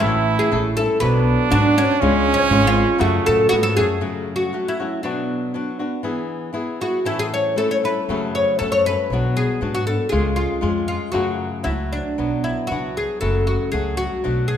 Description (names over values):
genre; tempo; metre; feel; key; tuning
mexican folk, mariachi; 118 BPM; 2/4; swing 53% on 8ths, rubato; F# minor; A4 = 440 Hz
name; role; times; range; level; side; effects
oud; melody; 0.0-14.5 s; C#4 to C#5; -21 LUFS; equal; none
mellow trumpet; second line; 0.0-4.0 s; A3 to E4; -21 LUFS; right 6 dB; none
flamenco guitar; accompaniment; 0.0-14.6 s; F#2 to A4; -24 LUFS; left 3 dB; none
upright bass; bass; 0.0-4.0, 8.1-14.6 s; F#1 to A2; -23 LUFS; equal; none
room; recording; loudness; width
moderate scoring stage reverb, RT60 1.6 s; minimal, uncompressed stereo recording; -18 LUFS; side -9 dB against mid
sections
0.0-4.0 A section; 4.0-12.2 B section; 12.2-14.6 A section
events
none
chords
0.0 A; 1.0 Bm; 2.0 C#; 3.0 F#m; 5.0 Bm; 6.0 E; 7.1 A; 8.1 F#m; 9.1 Bm; 10.1 C#; 11.1 F#m; 12.2 Bm; 13.2 F#m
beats
| 0.00 0.51 | 1.01 1.51 | 2.01 2.50 | 3.00 3.50 | 4.02 4.53 | 5.03 5.54 | 6.04 6.54 | 7.05 7.57 | 8.09 8.60 | 9.11 9.61 | 10.11 10.62 | 11.13 11.65 | 12.18 12.71 | 13.22 13.74 | 14.24